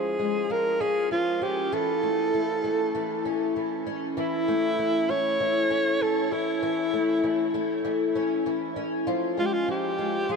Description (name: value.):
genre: dream pop.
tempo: 98 BPM.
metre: 4/4.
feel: straight.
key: unclear.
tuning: A4 = 440 Hz.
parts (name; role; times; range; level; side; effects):
breathy alto saxophone; melody; 0.0-10.4 s; E4 to C#5; -26 LUFS; right 1 dB; ping-pong delay.
fingerpicked twelve-string acoustic guitar; arpeggios; 0.0-10.4 s; E3 to C#4; -26 LUFS; left 2 dB; wide subtle chorus, ping-pong delay.
room: wet huge ambient reverb, RT60 7.4 s.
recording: none.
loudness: -23 LUFS.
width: side -4 dB against mid.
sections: 0.0-4.2 A section; 4.2-10.4 A section.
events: none.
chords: 0.0 C#; 1.7 A; 9.1 C#.